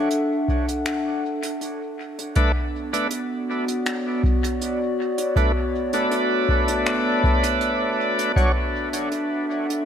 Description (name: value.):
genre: ambient dub.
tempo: 80 BPM.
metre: 4/4.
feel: straight.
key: B minor.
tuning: A4 = 440 Hz.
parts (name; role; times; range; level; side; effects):
warbly tape-like pad; sustained chords; 0.0-9.8 s; B3 to F#5; -24 LUFS; left 1 dB; chorus, built-in reverb.
soft brush drum kit; drums; 0.1-9.8 s; finger snaps, hi-hat; -32 LUFS; right 2 dB; dub echo.
electronic kick drum; drums; 0.5-8.5 s; none; -22 LUFS; equal; none.
bright tonewheel organ; stabs; 2.4-8.5 s; F#3 to C#5; -25 LUFS; right 1 dB; overdrive, slow rotary speaker, dub echo.
room: moderate echo chamber reverb, RT60 2.1 s.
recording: none.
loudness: -20 LUFS.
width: side -8 dB against mid.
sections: 0.0-2.4 A section; 2.4-9.8 B section.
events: break 0.9-2.4.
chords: 0.0 D; 2.4 Bm7; 8.4 Dmaj7.